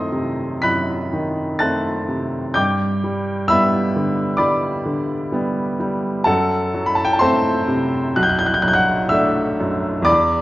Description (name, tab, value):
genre	classical, romantic nocturne for solo piano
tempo	63 BPM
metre	4/4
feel	rubato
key	unclear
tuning	A4 = 440 Hz
part	clear baby grand piano	solo	0.0-10.4 s	B1 to B6	-17 LUFS	equal	none
room	moderate recital hall reverb, RT60 1.6 s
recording	worn, warbling old tape, cassette tape, warbly pitch drift, nothing above 7.8 kHz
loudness	-17 LUFS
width	side -17 dB against mid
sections	0.0-10.4 A section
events	none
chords	0.0 F#dim7; 2.6 G; 6.3 F#dim; 8.2 Bm7